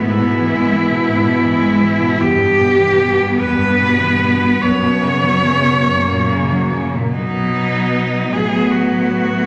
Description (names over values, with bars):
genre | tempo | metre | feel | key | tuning
classical, lyrical piece for cello ensemble | 47-56 BPM (dotted quarters) | 6/8 | rubato | B major | A4 = 440 Hz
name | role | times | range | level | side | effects
clear cello | melody | 0.0-9.5 s | D#4 to C#5 | -19 LUFS | equal | none
rich cello | second line | 0.0-9.5 s | A#3 to B3 | -22 LUFS | equal | none
rich cello | accompaniment | 0.0-9.5 s | E2 to G#3 | -21 LUFS | equal | none
clear cello | bass | 0.0-9.5 s | F#2 to B2 | -25 LUFS | equal | none
room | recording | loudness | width
wet recital hall reverb, RT60 1.7 s | none | -15 LUFS | mono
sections
0.0-9.5 A section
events
none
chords
0.0 E/G#; 2.2 Em; 4.6 F#sus4; 5.9 F#; 7.1 B; 8.3 B5/A